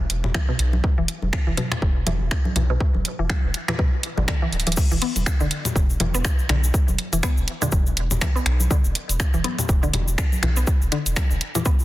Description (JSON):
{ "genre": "minimal techno", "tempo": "122 BPM", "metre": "4/4", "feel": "swing 58% on 16ths", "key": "unclear", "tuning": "A4 = 442 Hz", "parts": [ { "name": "round analog bass", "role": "bass", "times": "0.0-11.4 s", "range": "D1 to B1", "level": "-23 LUFS", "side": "equal", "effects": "sidechain pumping" }, { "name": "house drum kit", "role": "drums", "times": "0.1-11.6 s", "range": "crash cymbal, finger snaps, hi-hat", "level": "-27 LUFS", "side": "right 1 dB", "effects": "overdrive, soft clipping on snare" }, { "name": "congas", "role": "percussion", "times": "0.2-11.6 s", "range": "none", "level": "-30 LUFS", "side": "left 2 dB", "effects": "none" }, { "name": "mallet-like synth pluck", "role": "riff", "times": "0.3-11.7 s", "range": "B2 to B3", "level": "-29 LUFS", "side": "equal", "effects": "chorus, phaser, cassette tape, sidechain pumping, dub echo" }, { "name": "electronic kick drum", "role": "drums", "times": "0.3-11.8 s", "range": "none", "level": "-21 LUFS", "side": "equal", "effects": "overdrive" }, { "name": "cabasa", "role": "percussion", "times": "4.8-11.8 s", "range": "none", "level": "-29 LUFS", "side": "left 3 dB", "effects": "none" } ], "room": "little or no reverb", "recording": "dense, heavily limited modern master", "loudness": "-19 LUFS", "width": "side -16 dB against mid", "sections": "0.0-4.8 A section; 4.8-11.8 B section", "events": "drum fill 4.5; drop 4.8-11.8", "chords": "0.0 E5" }